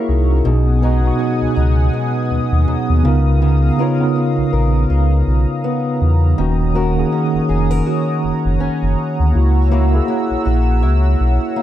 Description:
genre	contemporary R&B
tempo	81 BPM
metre	4/4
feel	swing 58% on 16ths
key	Eb minor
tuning	A4 = 440 Hz
part	mellow tine electric piano	accompaniment	0.0-11.6 s	B2 to Db5	-18 LUFS	right 2 dB	medium stereo tremolo
part	chorused pulse-width pad	sustained chords	0.0-11.6 s	B3 to Fb6	-24 LUFS	right 1 dB	none
part	fingerpicked acoustic archtop guitar	arpeggios	0.0-11.6 s	B2 to Bb4	-24 LUFS	left 5 dB	tape echo
part	sub bass with octave	bass	0.1-11.4 s	Eb1 to Fb2	-15 LUFS	equal	none
room	light reverb, digital ambience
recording	dark, warm production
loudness	-13 LUFS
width	side -12 dB against mid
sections	0.0-11.6 A section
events	none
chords	0.5 B6; 3.0 Db13; 6.4 Ebm7; 9.3 Gb7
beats	| 0.45 1.19 1.93 2.67 | 3.42 4.16 4.90 5.64 | 6.38 7.12 7.86 8.60 | 9.34 10.08 10.82 11.56

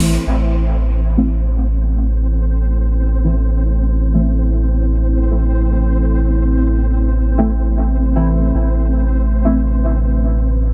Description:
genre	techno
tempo	116 BPM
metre	4/4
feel	straight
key	A minor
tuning	A4 = 440 Hz
part	deep mellow chord stab	stabs	0.0-9.6 s	E3 to E4	-24 LUFS	equal	chorus, phaser, cassette tape, dub echo
part	soft dub sub bass	bass	0.0-10.7 s	A1	-17 LUFS	equal	none
part	flickering grainy texture	texture	0.0-10.7 s	C4 to C5	-29 LUFS	equal	built-in reverb
part	deep dark ambient pad	sustained chords	1.7-10.7 s	A3 to B4	-26 LUFS	equal	chorus, built-in reverb
room	light reverb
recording	none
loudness	-16 LUFS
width	mono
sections	0.3-10.7 A section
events	filter sweep on ambient pad 0.3-10.7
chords	0.3 Am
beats	| 0.26 0.78 1.29 1.81 | 2.33 2.85 3.36 3.88 | 4.40 4.92 5.43 5.95 | 6.47 6.99 7.50 8.02 | 8.54 9.05 9.57 10.09 | 10.61

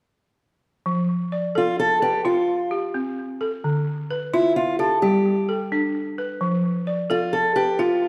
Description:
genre	west african traditional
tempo	87 BPM (dotted quarters)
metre	12/8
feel	straight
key	F lydian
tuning	A4 = 443 Hz
part	balafon	arpeggios	0.9-8.1 s	D3 to D5	-25 LUFS	equal	tape echo
part	fingerpicked steel-string acoustic guitar	melody	1.6-8.1 s	E4 to A4	-24 LUFS	equal	tape echo
room	wet recital hall reverb, RT60 1.4 s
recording	none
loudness	-22 LUFS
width	mono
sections	0.9-8.1 A section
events	none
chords	0.9 F; 3.6 Dm; 5.0 G; 6.4 F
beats	| 0.86 1.56 2.25 2.94 | 3.64 4.33 5.02 5.71 | 6.41 7.10 7.79

